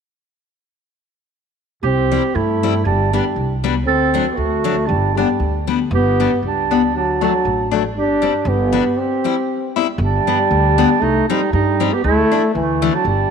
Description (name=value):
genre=alpine folk, alpine dance band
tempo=118 BPM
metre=2/4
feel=swing 55% on 8ths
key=C major, G major from 10.0 s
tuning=A4 = 440 Hz
part: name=warm clarinet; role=second line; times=1.8-13.3 s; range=A3 to A4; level=-20 LUFS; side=right 11 dB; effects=none
part: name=upright bass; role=bass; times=1.8-13.2 s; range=G1 to G2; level=-21 LUFS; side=right 1 dB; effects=none
part: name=warm euphonium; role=melody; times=1.9-13.3 s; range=E3 to D4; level=-19 LUFS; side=left 2 dB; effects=slapback echo
part: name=picked steel-string acoustic guitar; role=accompaniment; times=2.1-12.9 s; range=E3 to E4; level=-21 LUFS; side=left 11 dB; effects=none
room=moderate plate reverb, RT60 2.6 s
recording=1960s-style stereo with parts hard left and right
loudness=-15 LUFS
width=side -6 dB against mid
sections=1.8-10.0 A section; 10.0-13.3 B section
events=break 9.0-10.0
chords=1.8 C; 2.9 G; 3.9 D7; 4.9 G; 6.9 D; 7.9 Gsus4; 8.4 G; 9.0 C; 10.0 G; 11.0 Cm; 12.0 Dsus2